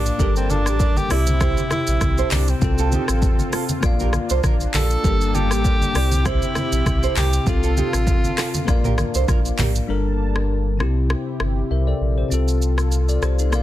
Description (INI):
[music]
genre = afrobeats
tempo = 99 BPM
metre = 4/4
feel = swing 55% on 16ths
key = unclear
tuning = A4 = 440 Hz
[part]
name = breathy tenor saxophone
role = melody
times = 0.0-9.3 s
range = C4 to A4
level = -26 LUFS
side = equal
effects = ping-pong delay
[part]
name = bell-like tine electric piano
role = accompaniment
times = 0.0-13.6 s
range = C3 to F5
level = -26 LUFS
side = left 6 dB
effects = none
[part]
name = warm analog pad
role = sustained chords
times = 0.0-13.6 s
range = C3 to A5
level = -31 LUFS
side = right 1 dB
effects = chorus
[part]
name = sub bass with octave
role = bass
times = 0.0-13.6 s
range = G1 to C2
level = -20 LUFS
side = equal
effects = none
[part]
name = afro-pop drum kit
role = drums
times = 0.1-13.6 s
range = handclaps, hi-hat, kick drum, rim click, shaker, toms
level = -22 LUFS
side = equal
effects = none
[part]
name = nylon-string guitar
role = riff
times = 0.2-9.7 s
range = Eb4 to D5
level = -28 LUFS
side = right 9 dB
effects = ping-pong delay
[part]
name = congas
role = percussion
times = 0.2-9.7 s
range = none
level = -29 LUFS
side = right 2 dB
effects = none
[sound]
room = digital ambience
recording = dense, heavily limited modern master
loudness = -17 LUFS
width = side -14 dB against mid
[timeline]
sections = 0.0-9.9 A section; 9.9-13.6 B section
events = none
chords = 0.2 Gmadd9; 1.1 C; 2.6 F; 3.8 Bb; 5.0 Gmadd9; 6.0 C; 7.5 F; 8.7 Bb; 9.9 Gmadd9; 10.8 C; 12.3 F/C